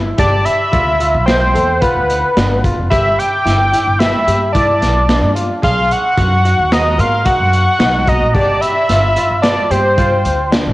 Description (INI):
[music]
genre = progressive instrumental, band music in an uneven meter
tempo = 110 BPM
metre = 5/4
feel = straight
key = unclear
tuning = A4 = 440 Hz
[part]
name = clear concert grand piano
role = arpeggios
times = 0.0-10.7 s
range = D4 to A#4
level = -22 LUFS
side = left 1 dB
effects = cassette tape, analog delay
[part]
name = upright bass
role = bass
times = 0.0-10.7 s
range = F1 to Ab2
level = -17 LUFS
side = equal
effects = none
[part]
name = lead with added fifth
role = melody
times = 0.2-10.5 s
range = B4 to G5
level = -14 LUFS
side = equal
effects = chorus, cassette tape, analog delay
[part]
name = crunchy breakbeat drum kit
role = drums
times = 0.2-10.6 s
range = hi-hat, kick drum, snare drum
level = -18 LUFS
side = equal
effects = cassette tape
[sound]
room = light reverb, studio ambience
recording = home recording on cassette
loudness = -11 LUFS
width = side -18 dB against mid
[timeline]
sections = 0.0-10.7 A section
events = none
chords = 0.2 G13; 2.9 Em7/G; 5.6 Bmaj7; 8.3 G7sus4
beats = | 0.18 0.73 1.27 1.82 2.36 | 2.91 3.45 4.00 4.54 5.08 | 5.63 6.17 6.71 7.26 7.80 | 8.35 8.89 9.43 9.97 10.52